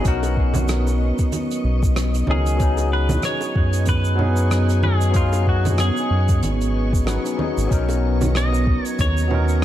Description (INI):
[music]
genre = sunset chillout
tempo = 94 BPM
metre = 4/4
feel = swing 57% on 16ths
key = B major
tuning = A4 = 440 Hz
[part]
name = clean electric guitar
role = melody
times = 0.0-9.6 s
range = E#4 to D#5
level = -27 LUFS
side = equal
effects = wide subtle chorus, digital delay
[part]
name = barky tine electric piano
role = accompaniment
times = 0.0-9.6 s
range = F#3 to B4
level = -26 LUFS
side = moving between left 7 dB and right 5 dB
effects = auto-pan, tape echo
[part]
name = soft string machine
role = sustained chords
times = 0.0-9.6 s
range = B3 to C#6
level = -28 LUFS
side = equal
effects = ensemble chorus, vintage 12-bit sampler grit
[part]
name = round analog bass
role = bass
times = 0.0-9.6 s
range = G#1 to F#2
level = -19 LUFS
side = equal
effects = none
[part]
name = soft brush drum kit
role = drums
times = 0.0-9.6 s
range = hi-hat, rim click, shaker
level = -30 LUFS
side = right 2 dB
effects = none
[part]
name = electronic kick drum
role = drums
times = 0.1-9.1 s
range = none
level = -21 LUFS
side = equal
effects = none
[part]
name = bongos and congas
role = percussion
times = 0.2-9.5 s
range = none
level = -28 LUFS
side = right 2 dB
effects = none
[sound]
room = light reverb, small room ambience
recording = dark, warm production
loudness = -17 LUFS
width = side -12 dB against mid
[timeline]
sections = 0.0-9.6 A section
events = none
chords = 0.0 Bmaj9; 2.6 C#9sus4; 7.7 Bmaj9